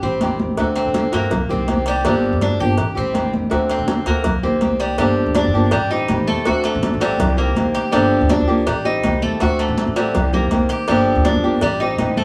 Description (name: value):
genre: latin, Cuban son and guajira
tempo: 163 BPM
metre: 4/4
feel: straight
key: G minor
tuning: A4 = 438 Hz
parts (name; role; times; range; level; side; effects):
- flamenco guitar; accompaniment; 0.0-12.2 s; D3 to G4; -22 LUFS; equal; none
- Cuban tres; arpeggios; 0.0-12.2 s; G3 to G4; -24 LUFS; equal; none
- upright bass; bass; 0.0-12.2 s; G1 to D3; -25 LUFS; equal; none
- congas; percussion; 0.0-12.2 s; none; -26 LUFS; equal; none
- cowbell; percussion; 0.2-12.2 s; none; -29 LUFS; equal; none
room: moderate stone room reverb, RT60 1.1 s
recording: band playing live in one room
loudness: -18 LUFS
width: mono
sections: 0.0-5.0 A section; 5.0-12.2 B section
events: none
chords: 0.0 Am7b5; 0.6 D7; 1.3 Cm7; 2.0 Gm7; 2.8 Am7b5; 3.5 D7; 4.2 Cm7; 5.0 Gm7; 5.7 Am7b5; 6.5 D7; 7.2 Cm7; 7.9 Gm7; 8.7 Am7b5; 9.4 D7; 10.1 Cm7; 10.9 Gm7; 11.6 Am7b5